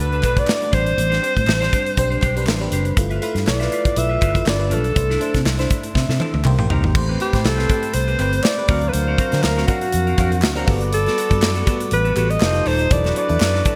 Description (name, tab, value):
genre	polished 1980s jazz-funk pop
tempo	121 BPM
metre	4/4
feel	swing 54% on 16ths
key	A dorian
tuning	A4 = 438 Hz
part	breathy alto saxophone	melody	0.0-13.8 s	F#4 to E5	-24 LUFS	equal	none
part	FM electric piano	accompaniment	0.0-13.8 s	F#3 to E#5	-28 LUFS	equal	phaser, subtle chorus
part	semi-hollow electric guitar	riff	0.0-13.8 s	B3 to E5	-31 LUFS	equal	subtle chorus
part	vintage muted fingered electric bass	bass	0.0-13.6 s	Eb1 to D3	-23 LUFS	equal	none
part	modern studio drum kit	drums	0.1-13.8 s	crash cymbal, hi-hat, kick drum, snare drum, toms	-23 LUFS	equal	none
part	group handclap	percussion	0.2-13.5 s	none	-38 LUFS	equal	none
part	warm horn section	second line	6.9-13.8 s	F#3 to E#5	-32 LUFS	equal	delay
room	moderate lush hall reverb, RT60 1.9 s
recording	bright 1980s-style digital production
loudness	-19 LUFS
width	mono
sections	0.0-7.0 A section; 7.0-13.8 B section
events	drum fill 6.0-7.0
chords	0.0 Bm7; 0.7 Am11; 3.0 G13; 4.5 G7; 5.0 C69; 6.5 Cm7; 7.0 Am9; 8.7 D7alt; 10.7 Gmaj9; 12.4 F9; 12.9 E9sus4